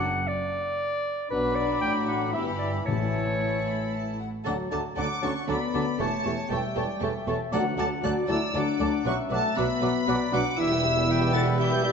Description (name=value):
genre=quick classical-period movement for symphony orchestra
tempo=117 BPM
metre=3/4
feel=straight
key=D major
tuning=A4 = 440 Hz
part: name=clear clarinet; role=second line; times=0.0-11.9 s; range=B4 to G5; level=-31 LUFS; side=left 1 dB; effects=none
part: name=mellow hollow concert flute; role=second line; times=0.0-11.9 s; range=B5 to E6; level=-37 LUFS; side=left 2 dB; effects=none
part: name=rich studio double bass section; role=bass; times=0.0-11.9 s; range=E1 to D2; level=-33 LUFS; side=right 4 dB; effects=none
part: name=warm studio cello section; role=bass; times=0.0-11.9 s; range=D2 to D3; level=-33 LUFS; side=right 2 dB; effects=none
part: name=rich studio violin section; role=melody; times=1.3-11.9 s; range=F#5 to A6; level=-33 LUFS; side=equal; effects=none
part: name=clear oboe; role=second line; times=1.3-11.9 s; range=E5 to B5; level=-36 LUFS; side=right 1 dB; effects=none
part: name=warm studio violin section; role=second line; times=1.3-11.9 s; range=E4 to G5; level=-36 LUFS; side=left 2 dB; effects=none
part: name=mellow bassoon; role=accompaniment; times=1.3-11.9 s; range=E3 to G3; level=-36 LUFS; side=right 1 dB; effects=none
part: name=warm studio viola section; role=accompaniment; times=1.3-11.9 s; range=E3 to G4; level=-34 LUFS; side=right 1 dB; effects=none
part: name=mellow French horn section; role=sustained chords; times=1.3-11.9 s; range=F#3 to A4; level=-31 LUFS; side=left 5 dB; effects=none
part: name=timpani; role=percussion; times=2.9-3.6, 7.5-8.3 s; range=A2 to D3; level=-33 LUFS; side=left 3 dB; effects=none
room=wet scoring stage reverb, RT60 2.1 s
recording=nothing above 8.0 kHz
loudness=-24 LUFS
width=side -6 dB against mid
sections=0.0-4.5 A section; 4.5-11.9 B section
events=none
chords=0.0 D/F#; 1.3 Bm; 2.4 Em/G; 2.9 A; 4.5 D; 6.0 A7/E; 7.5 D; 9.1 Bm; 10.6 Em